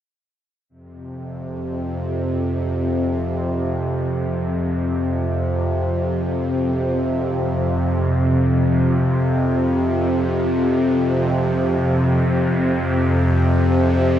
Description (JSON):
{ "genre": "ambient", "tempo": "free time", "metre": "none", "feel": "none", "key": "unclear", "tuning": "A4 = 440 Hz", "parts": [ { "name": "bowed-like drone", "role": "drone", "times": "1.0-14.2 s", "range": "F2 to C3", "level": "-18 LUFS", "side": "equal", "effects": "built-in reverb, phaser" } ], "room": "wet huge ambient reverb, RT60 7.5 s", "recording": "none", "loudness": "-17 LUFS", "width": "side -10 dB against mid", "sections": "0.7-14.2 A section", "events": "none", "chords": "0.7 F5", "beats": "free time" }